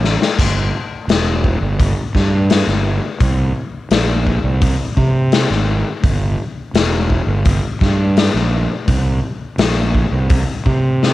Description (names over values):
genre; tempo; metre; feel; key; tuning
psychedelic rock; 85 BPM; 4/4; straight; unclear; A4 = 441 Hz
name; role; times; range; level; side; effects
fuzz fingered electric bass; bass; 0.0-11.1 s; E1 to C3; -16 LUFS; right 1 dB; overdrive
raw garage drum kit; drums; 0.0-11.1 s; hi-hat, kick drum, snare drum, splash cymbal; -17 LUFS; left 2 dB; none
room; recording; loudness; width
little or no reverb; 1960s-style stereo; -14 LUFS; side -16 dB against mid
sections
0.0-11.1 A section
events
drum fill 0.0-0.4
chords
none